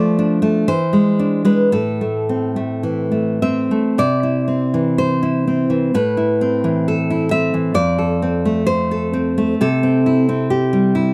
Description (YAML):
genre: romantic piece for solo classical guitar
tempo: 51-68 BPM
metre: 2/4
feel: rubato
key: A minor, C major from 4.0 s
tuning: A4 = 437 Hz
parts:
  - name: nylon-string guitar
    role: solo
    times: 0.0-11.1 s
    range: F2 to E5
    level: -17 LUFS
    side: equal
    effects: none
room: little or no reverb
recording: dry, close 1970s-style studio recording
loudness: -17 LUFS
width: mono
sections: 0.0-4.0 A section; 4.0-11.1 B section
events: none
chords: 0.0 Dm/F; 0.7 E7; 1.7 Am; 4.0 C; 5.9 Am; 7.8 F; 9.6 C